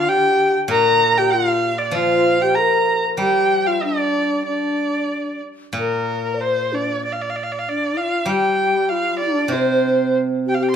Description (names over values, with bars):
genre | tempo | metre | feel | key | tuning
chinese traditional, Chinese chamber ensemble | 96 BPM | 4/4 | rubato | D jue mode | A4 = 436 Hz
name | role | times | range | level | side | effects
rich erhu | melody | 0.0-10.8 s | Bb4 to C6 | -20 LUFS | right 2 dB | none
breathy mellow low xiao | second line | 0.0-10.8 s | D4 to D5 | -21 LUFS | left 3 dB | none
steel-string zither | accompaniment | 0.0-10.7 s | Bb2 to G3 | -23 LUFS | right 2 dB | none
room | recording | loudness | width
moderate recital hall reverb, RT60 1.6 s | minimal, uncompressed stereo recording | -16 LUFS | side -8 dB against mid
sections
0.0-5.8 A section; 5.8-10.8 B section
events
none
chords
none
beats
0.10 | 0.71 1.33 1.95 2.57 | 3.19 3.82 4.46 5.11 | 5.77 6.41 7.04 7.67 | 8.29 8.91 9.53 10.14